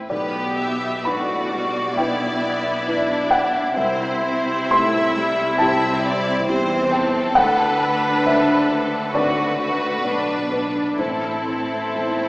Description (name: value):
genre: cinematic, emotional film score for orchestra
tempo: 66 BPM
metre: 4/4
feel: uneven beats, rubato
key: unclear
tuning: A4 = 439 Hz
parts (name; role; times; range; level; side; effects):
- dark baby grand piano; accompaniment; 0.0-12.3 s; A1 to C6; -22 LUFS; equal; none
- concert harp; arpeggios; 0.0-12.3 s; A2 to D5; -32 LUFS; equal; none
- clear studio violin section; melody; 0.1-12.3 s; A4 to E5; -26 LUFS; left 1 dB; none
- rich studio violin section; second line; 0.1-12.3 s; C4 to G4; -23 LUFS; equal; none
- rich studio viola section; accompaniment; 0.1-12.3 s; G3 to B4; -26 LUFS; equal; none
- rich studio cello section; bass; 0.1-12.3 s; E2 to E3; -30 LUFS; equal; none
- rich studio double bass section; bass; 0.1-12.3 s; A1 to E2; -33 LUFS; equal; none
room: wet scoring stage reverb, RT60 2.1 s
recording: heard from further back in the room, small speaker sound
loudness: -17 LUFS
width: side -22 dB against mid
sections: 0.0-12.3 A section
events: none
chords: 0.1 Em7/B; 3.8 C; 7.4 D7; 11.0 Am